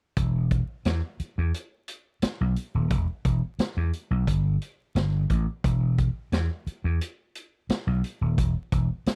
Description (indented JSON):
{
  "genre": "funk",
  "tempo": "88 BPM",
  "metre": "4/4",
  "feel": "straight",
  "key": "E minor",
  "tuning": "A4 = 442 Hz",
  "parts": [
    { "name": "vintage slap bass", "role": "bass", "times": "0.2-9.1 s", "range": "D#1 to E2", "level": "-26 LUFS", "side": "equal", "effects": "none" },
    { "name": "vintage drum kit", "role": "drums", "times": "0.2-9.2 s", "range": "hi-hat, kick drum, snare drum", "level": "-30 LUFS", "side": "equal", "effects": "none" }
  ],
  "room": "little or no reverb",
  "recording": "dry, close 1970s-style studio recording, vinyl crackle",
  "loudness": "-27 LUFS",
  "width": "mono",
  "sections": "0.2-9.2 A section",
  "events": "none",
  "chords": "none"
}